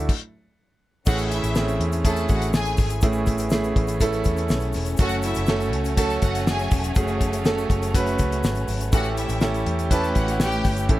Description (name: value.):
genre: piano-driven pop.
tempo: 122 BPM.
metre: 4/4.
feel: straight.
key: A major.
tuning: A4 = 440 Hz.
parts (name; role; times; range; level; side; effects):
clear concert grand piano; accompaniment; 0.0-11.0 s; A2 to B4; -25 LUFS; right 2 dB; none.
warm symphonic string section; sustained chords; 0.0-11.0 s; E3 to G4; -33 LUFS; left 2 dB; none.
vintage muted fingered electric bass; bass; 0.0-11.0 s; E1 to E2; -26 LUFS; equal; none.
damped 70s drum kit; drums; 0.1-11.0 s; crash cymbal, hi-hat, kick drum, snare drum; -23 LUFS; left 1 dB; none.
warm studio violin section; second line; 1.1-10.8 s; E4 to A5; -30 LUFS; left 1 dB; none.
egg shaker; percussion; 1.1-10.9 s; none; -41 LUFS; left 7 dB; none.
room: little or no reverb.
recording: none.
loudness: -20 LUFS.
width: side -16 dB against mid.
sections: 0.0-1.1 A section; 1.1-11.0 A section.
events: stop 0.1-1.1.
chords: 0.0 Dadd9; 1.1 Amaj7; 5.0 F#m; 8.9 A7.